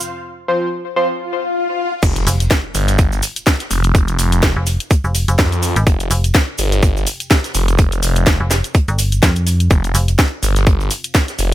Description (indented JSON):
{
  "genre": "bass house",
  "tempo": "125 BPM",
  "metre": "4/4",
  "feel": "swing 57% on 16ths",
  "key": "unclear",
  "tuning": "A4 = 441 Hz",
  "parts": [
    { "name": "dark analog pad", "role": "sustained chords", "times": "0.0-11.5 s", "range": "F3 to G5", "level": "-45 LUFS", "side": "left 2 dB", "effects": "none" },
    { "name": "cabasa", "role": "percussion", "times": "0.0-11.5 s", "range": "none", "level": "-26 LUFS", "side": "right 4 dB", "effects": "none" },
    { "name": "band-passed chord stab", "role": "stabs", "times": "0.5-1.1 s", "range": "F3 to C5", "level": "-18 LUFS", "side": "equal", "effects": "chorus, phaser, sidechain pumping, ping-pong delay" },
    { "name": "swell and impact", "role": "sound effects", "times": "1.2-3.9 s", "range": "none", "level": "-22 LUFS", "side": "left 3 dB", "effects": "none" },
    { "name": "phased detuned saw bass", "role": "bass", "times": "2.0-11.5 s", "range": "F1 to F2", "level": "-16 LUFS", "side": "equal", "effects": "phaser, overdrive, sidechain pumping" },
    { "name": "electronic kick drum", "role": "drums", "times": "2.0-11.3 s", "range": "none", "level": "-13 LUFS", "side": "equal", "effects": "overdrive" },
    { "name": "garage drum kit", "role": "drums", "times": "2.0-11.5 s", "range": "crash cymbal, hi-hat, snare drum", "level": "-20 LUFS", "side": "left 1 dB", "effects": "low-pass filter on cymbals, low-pass filter on hats, low-pass filter on snare" },
    { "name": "jazz brush drum kit", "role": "drums", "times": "2.0-11.5 s", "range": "hi-hat, snare drum", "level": "-26 LUFS", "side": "right 2 dB", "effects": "sidechain pumping on hats, high-pass filter on hats, low-pass filter on hats, high-pass filter on snare, low-pass filter on snare, high-pass filter on room, low-pass filter on room" },
    { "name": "metallic FM bass", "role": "bass", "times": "2.3-10.2 s", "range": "F1 to F2", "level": "-15 LUFS", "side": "equal", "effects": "tube saturation, sidechain pumping" }
  ],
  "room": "small room ambience",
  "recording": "none",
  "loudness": "-13 LUFS",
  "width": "side -14 dB against mid",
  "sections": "0.0-2.0 A section; 2.0-11.5 B section",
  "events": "swell 1.2-2.0; drop 2.0-11.5; impact 2.0-3.9",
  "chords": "0.0 F5"
}